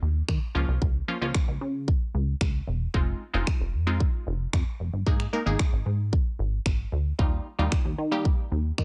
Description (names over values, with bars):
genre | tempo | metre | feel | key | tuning
dance-pop | 113 BPM | 4/4 | straight | Bb dorian | A4 = 440 Hz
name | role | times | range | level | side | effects
wavetable chord stab | accompaniment | 0.0-8.8 s | F3 to Bb4 | -34 LUFS | equal | sidechain pumping
plucky analog bass | bass | 0.0-8.8 s | E1 to Eb3 | -29 LUFS | equal | sidechain pumping
pop drum kit | drums | 0.3-8.8 s | finger snaps, kick drum | -28 LUFS | equal | none
room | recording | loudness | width
digital ambience | nothing above 10.5 kHz | -27 LUFS | mono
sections
0.0-8.8 A section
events
none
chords
0.0 Ebadd9; 0.6 Bbm; 2.9 Fm7; 5.1 Absus2; 7.2 Ebadd9